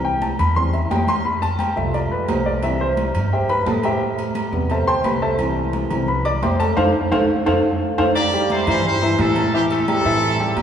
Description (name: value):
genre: latin, salsa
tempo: 174 BPM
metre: 4/4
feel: straight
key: C major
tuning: A4 = 440 Hz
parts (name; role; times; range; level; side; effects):
- warm baby grand piano; accompaniment; 0.0-10.6 s; C3 to D6; -20 LUFS; left 1 dB; none
- upright bass; bass; 0.0-10.6 s; B1 to A2; -24 LUFS; equal; none
- congas; percussion; 0.0-10.6 s; none; -28 LUFS; left 1 dB; none
- timbales and agogo bells; percussion; 0.2-10.6 s; none; -24 LUFS; right 2 dB; none
- brilliant horn section; melody; 8.2-10.6 s; C4 to D5; -20 LUFS; equal; none
room: wet church reverb, RT60 2.7 s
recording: recorded in a church or concert hall, small room ambience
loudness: -17 LUFS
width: side -8 dB against mid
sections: 0.0-8.2 A section; 8.2-10.6 B section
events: grand piano solo 0.0-8.2; drum fill 6.8-8.2; band accent 6.8-8.2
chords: 0.0 C; 1.3 Fadd9; 2.6 C; 4.0 Am7; 5.4 C; 6.8 F; 8.2 C; 9.5 Am7